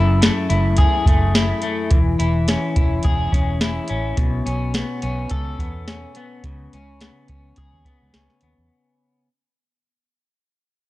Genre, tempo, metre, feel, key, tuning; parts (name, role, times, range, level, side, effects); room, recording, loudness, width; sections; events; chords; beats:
indie pop, bedroom pop; 106 BPM; 4/4; swing 55% on 16ths; A4 = 440 Hz
electric guitar at the edge of break-up; accompaniment; 0.0-9.3 s; F#2 to A4; -22 LUFS; left 2 dB; wide subtle chorus, vibrato effect
vintage muted fingered electric bass; bass; 0.0-8.7 s; E1 to E2; -22 LUFS; equal; tube saturation
soft vintage rhythm box; drums; 0.2-8.6 s; hi-hat, kick drum, snare drum; -19 LUFS; equal; vintage 12-bit sampler grit
little or no reverb; dry, gritty hardware recording, transformer saturation; -17 LUFS; side -17 dB against mid
0.0-8.7 A section
fade-out 0.0-8.7
0.0 F#m9; 1.9 E6; 4.2 B9sus4; 6.4 C#7(no3)
0.21 0.78 1.34 | 1.91 2.48 3.04 3.61 | 4.17 4.74 5.31 5.88 | 6.44 7.01 7.58 8.14